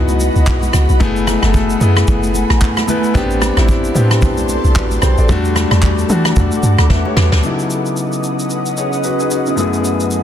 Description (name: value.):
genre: amapiano.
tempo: 112 BPM.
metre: 4/4.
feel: swing 58% on 16ths.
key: C# minor.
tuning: A4 = 440 Hz.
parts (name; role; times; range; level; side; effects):
warm concert grand piano; accompaniment; 0.0-10.2 s; F#2 to E5; -18 LUFS; left 3 dB; none.
ethereal airy pad; sustained chords; 0.0-10.2 s; F#3 to D#6; -21 LUFS; right 1 dB; ensemble chorus, built-in reverb, sidechain pumping.
deep log drum bass; bass; 0.0-7.4 s; F#1 to E3; -14 LUFS; equal; none.
soft brush drum kit; drums; 0.1-10.2 s; handclaps, kick drum, rim click, shaker, snare drum; -18 LUFS; equal; none.
congas; percussion; 0.1-7.3 s; none; -26 LUFS; right 4 dB; none.
room: small room ambience.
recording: dense, heavily limited modern master.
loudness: -12 LUFS.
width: side -10 dB against mid.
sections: 0.0-7.4 A section; 7.4-10.2 B section.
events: drop 0.0-7.4; drum fill 6.9-7.4.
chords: 0.0 C#m11; 1.0 F#m11; 3.1 Am11; 5.3 Em11; 7.4 C#m11; 9.6 F#m11.